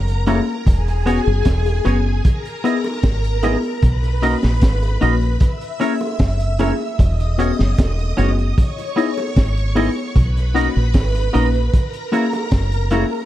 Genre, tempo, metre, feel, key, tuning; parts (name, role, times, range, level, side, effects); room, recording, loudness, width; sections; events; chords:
lovers rock reggae; 76 BPM; 4/4; straight; B major; A4 = 440 Hz
phased string machine; second line; 0.0-13.3 s; G#4 to E6; -26 LUFS; equal; ensemble chorus, phaser, tape echo
deep dub fingered electric bass; bass; 0.0-13.0 s; E1 to B1; -18 LUFS; equal
crunchy breakbeat drum kit; drums; 0.1-13.1 s; hi-hat, kick drum, snare drum; -17 LUFS; equal
FM electric piano with soft pad layer; accompaniment; 0.3-13.1 s; A#3 to G#4; -21 LUFS; left 4 dB; chorus, phaser
twangy electric guitar; stabs; 0.3-13.0 s; A#3 to D#5; -23 LUFS; right 3 dB
bongos; percussion; 0.3-13.1 s; -32 LUFS; right 4 dB; tape echo
studio reverb; dark, warm production; -15 LUFS; side -13 dB against mid
0.0-13.3 A section
0.0 F#7; 0.7 E69; 2.2 G#madd9; 3.8 Bmaj7; 5.4 F#7; 7.0 E69; 8.6 C#m9; 10.2 Bmaj7; 11.7 F#7